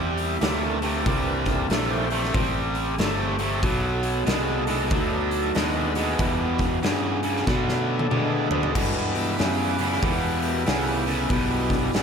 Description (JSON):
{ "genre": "blues rock power trio and southern rock", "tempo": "94 BPM", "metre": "4/4", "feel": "swing 63% on 8ths", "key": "E minor", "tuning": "A4 = 440 Hz", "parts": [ { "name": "overdriven tonewheel organ", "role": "sustained chords", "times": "0.0-12.0 s", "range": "D3 to E5", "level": "-30 LUFS", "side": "right 2 dB", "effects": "slow rotary speaker" }, { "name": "overdriven electric guitar", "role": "riff", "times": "0.0-12.0 s", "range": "E2 to A3", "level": "-25 LUFS", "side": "equal", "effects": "none" }, { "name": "fingered electric bass", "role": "bass", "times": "0.0-12.0 s", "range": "G1 to D3", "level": "-29 LUFS", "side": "equal", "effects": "none" }, { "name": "big rock drum kit", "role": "drums", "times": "0.2-12.0 s", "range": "crash cymbal, hi-hat, kick drum, snare drum, toms", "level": "-28 LUFS", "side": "equal", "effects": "none" } ], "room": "moderate lush hall reverb, RT60 2.5 s", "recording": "big arena sound", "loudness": "-21 LUFS", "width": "side -6 dB against mid", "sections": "0.0-8.8 A section; 8.8-12.0 A section", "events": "drum fill 7.5-8.8", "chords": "0.0 C7; 3.6 B7#9; 6.2 Em; 7.5 Bm7; 8.8 Em", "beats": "0.42 | 1.06 1.70 2.35 2.99 | 3.63 4.27 4.91 5.55 | 6.19 6.83 7.47 8.11 | 8.75 9.39 10.03 10.66 | 11.30 11.94" }